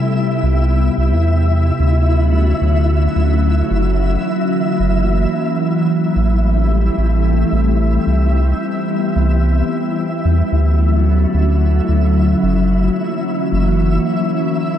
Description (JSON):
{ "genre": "IDM", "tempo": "110 BPM", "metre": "4/4", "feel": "straight", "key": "unclear", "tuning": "A4 = 440 Hz", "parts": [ { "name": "glassy FM pad", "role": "sustained chords", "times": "0.0-14.8 s", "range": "C3 to G4", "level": "-18 LUFS", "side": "left 1 dB", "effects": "ensemble chorus, built-in reverb" }, { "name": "flickering grainy texture", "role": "texture", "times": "0.0-14.8 s", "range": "E4 to E5", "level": "-23 LUFS", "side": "equal", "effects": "built-in reverb" }, { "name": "warm sub bass", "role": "bass", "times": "0.4-14.0 s", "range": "F#1 to E2", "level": "-14 LUFS", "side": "equal", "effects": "none" } ], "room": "light reverb", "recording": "nothing above 10.5 kHz", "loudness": "-13 LUFS", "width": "side -10 dB against mid", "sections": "0.0-14.8 A section", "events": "none", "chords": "0.0 Cmaj7; 1.8 Dmaj7; 4.0 F#7; 6.2 Am7; 8.3 Cmaj7; 10.5 Dmaj7; 12.7 F#7" }